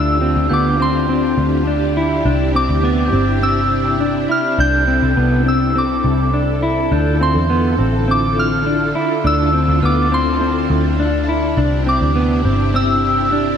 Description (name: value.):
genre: dream pop.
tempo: 103 BPM.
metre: 4/4.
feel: straight.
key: C major.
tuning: A4 = 439 Hz.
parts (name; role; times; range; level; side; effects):
soft synth bell; melody; 0.0-13.3 s; C6 to G6; -20 LUFS; equal; chorus, ping-pong delay.
string machine, violas; sustained chords; 0.0-13.6 s; C3 to A4; -20 LUFS; right 1 dB; ensemble chorus.
mellow electric guitar; arpeggios; 0.0-13.6 s; B3 to E4; -19 LUFS; left 2 dB; wide subtle chorus, ping-pong delay.
vintage muted picked electric bass; bass; 0.0-13.6 s; G1 to E2; -18 LUFS; equal; none.
glockenspiel with soft plastic mallets; texture; 0.5-13.4 s; D6 to A6; -31 LUFS; right 1 dB; ping-pong delay.
room: moderate concert hall reverb, RT60 2.2 s.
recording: none.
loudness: -14 LUFS.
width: side -8 dB against mid.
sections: 0.0-13.6 A section.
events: none.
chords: 0.0 Dmadd9; 2.3 Cadd9; 6.9 Dmadd9; 11.6 Cmaj9.